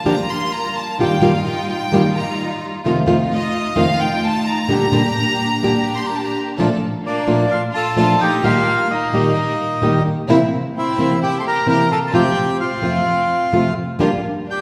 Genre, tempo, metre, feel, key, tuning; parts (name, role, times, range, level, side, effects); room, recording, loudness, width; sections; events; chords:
tango; 129 BPM; 4/4; rubato; Bb major; A4 = 440 Hz
bright studio violin section; second line; 0.0-14.6 s; Bb3 to C6; -26 LUFS; equal
flamenco guitar; accompaniment; 0.0-14.1 s; F2 to G4; -21 LUFS; equal
clear studio string section; stabs; 0.0-14.2 s; G3 to A4; -27 LUFS; equal
bandoneon; melody; 7.1-14.6 s; D4 to C6; -21 LUFS; equal
wet recital hall reverb, RT60 1.8 s; recorded in a church or concert hall; -18 LUFS; mono
0.0-6.6 A section; 6.6-14.6 A section
violin section solo 0.0-6.6
0.0 Gm7; 1.0 Ebadd9/G; 2.8 F7; 4.7 Bb6; 6.6 Bbmaj7; 8.4 Eb/Bb; 10.3 C7; 12.1 F; 14.0 Gm7